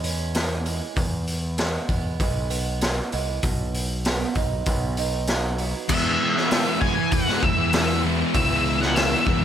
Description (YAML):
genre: quiet-loud alternative rock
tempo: 98 BPM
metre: 4/4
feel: straight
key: E major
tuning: A4 = 442 Hz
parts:
  - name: picked acoustic archtop guitar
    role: arpeggios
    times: 0.0-5.9 s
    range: E2 to D#4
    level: -31 LUFS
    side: right 13 dB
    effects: none
  - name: growling fingered electric bass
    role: bass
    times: 0.0-9.4 s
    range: B1 to E3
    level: -27 LUFS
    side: equal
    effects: overdrive
  - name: raw garage drum kit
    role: drums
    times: 0.0-9.4 s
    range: crash cymbal, hi-hat, kick drum, snare drum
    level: -24 LUFS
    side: equal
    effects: none
  - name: octave-fuzz lead guitar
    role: melody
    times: 5.9-9.4 s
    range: E5 to G#5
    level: -24 LUFS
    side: left 1 dB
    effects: distortion
  - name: sludgy distorted guitar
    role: riff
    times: 5.9-9.4 s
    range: E3 to E4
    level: -26 LUFS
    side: right 15 dB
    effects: overdrive
  - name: thick fuzz guitar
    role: riff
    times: 5.9-9.4 s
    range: E3 to E4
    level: -26 LUFS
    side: left 17 dB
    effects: distortion
room: light reverb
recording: none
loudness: -20 LUFS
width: side -9 dB against mid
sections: 0.0-5.9 A section; 5.9-9.4 B section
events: none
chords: 0.0 C#m/E; 1.0 E; 3.4 B; 5.9 E